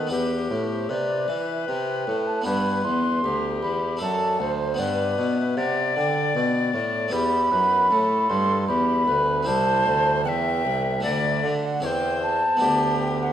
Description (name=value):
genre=classical, baroque-style sonata movement with continuo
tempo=77 BPM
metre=3/4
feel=straight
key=unclear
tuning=A4 = 441 Hz
part: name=tenor recorder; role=melody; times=0.0-13.3 s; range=G4 to F#5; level=-28 LUFS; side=left 5 dB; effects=none
part: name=mellow baroque flute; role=second line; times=0.0-13.3 s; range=A4 to C6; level=-24 LUFS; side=right 2 dB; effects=none
part: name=harpsichord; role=accompaniment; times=0.0-13.3 s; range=C2 to A4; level=-27 LUFS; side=left 1 dB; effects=none
part: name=clear bassoon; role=bass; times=0.0-13.3 s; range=C2 to E3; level=-28 LUFS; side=right 1 dB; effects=none
room=wet recital hall reverb, RT60 1.7 s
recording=none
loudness=-20 LUFS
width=side -10 dB against mid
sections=0.0-13.3 A section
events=none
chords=0.1 Em; 2.5 G; 4.0 D/F#; 4.8 G; 7.1 Em; 9.5 C; 11.0 D; 11.8 C/E; 12.6 G/D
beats=| 0.11 0.90 1.68 | 2.46 3.23 4.01 | 4.79 5.57 6.36 | 7.13 7.91 8.69 | 9.47 10.26 11.05 | 11.83 12.61